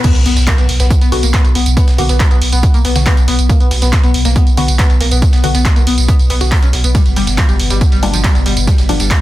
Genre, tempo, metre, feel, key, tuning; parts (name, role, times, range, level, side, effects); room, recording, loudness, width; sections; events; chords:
driving peak-time techno; 139 BPM; 4/4; straight; B harmonic minor; A4 = 442 Hz
overdriven synth lead; riff; 0.0-9.1 s; E#3 to C#4; -21 LUFS; left 3 dB; lush chorus, sidechain pumping, tape echo
deep dark ambient pad; drone; 0.0-9.2 s; B2 to B3; -24 LUFS; left 1 dB; chorus, built-in reverb, sidechain pumping
breakbeat sampler-style drum kit; drums; 0.0-9.2 s; hi-hat, snare drum; -28 LUFS; right 1 dB; high-pass filter on hats, soft clipping on snare, high-pass filter on snare
electronic kick drum; drums; 0.0-9.2 s; -11 LUFS; equal
punchy analog drum machine; drums; 0.0-9.2 s; crash cymbal, handclaps, hi-hat, ride cymbal, tambourine; -19 LUFS; right 2 dB; high-pass filter on snare, sidechain pumping on hats, high-pass filter on hats, sidechain pumping on cymbals, high-pass filter on cymbals, sidechain pumping on perc, high-pass filter on perc, high-pass filter on room
riser and impact; sound effects; 0.0-1.8 s; -20 LUFS; equal
warm sub bass; bass; 0.1-9.1 s; G1 to B1; -14 LUFS; equal; tube saturation, sidechain pumping, low-pass filter
filtered dub chord stab; stabs; 1.1-9.1 s; Bb2 to F#4; -21 LUFS; left 2 dB; phaser, sidechain pumping, tape echo
little or no reverb; dense, heavily limited modern master; -9 LUFS; side -15 dB against mid
0.0-9.2 A section
drop 0.0-9.2; impact 0.0-1.8
0.0 Bm; 6.9 Gm